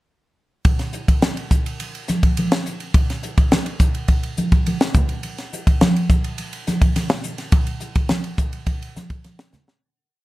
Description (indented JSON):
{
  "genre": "jazz",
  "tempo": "105 BPM",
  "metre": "4/4",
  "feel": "straight",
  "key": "none",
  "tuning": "none",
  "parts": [
    { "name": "crisp fusion drum kit", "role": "drums", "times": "0.6-9.8 s", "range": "hi-hat, kick drum, ride cymbal, snare drum", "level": "-18 LUFS", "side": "equal", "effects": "none" },
    { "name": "congas", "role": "percussion", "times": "0.7-9.7 s", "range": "none", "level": "-22 LUFS", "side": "equal", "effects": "none" }
  ],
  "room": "light reverb",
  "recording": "dark, warm production",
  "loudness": "-17 LUFS",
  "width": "side -18 dB against mid",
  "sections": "0.7-9.8 groove",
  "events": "fade-out 7.5-9.8; drum fill 9.5",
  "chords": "none",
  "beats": "| 0.66 1.23 1.80 2.37 | 2.94 3.52 4.09 4.66 | 5.23 5.80 6.38 6.95 | 7.52 8.10 8.67 9.24"
}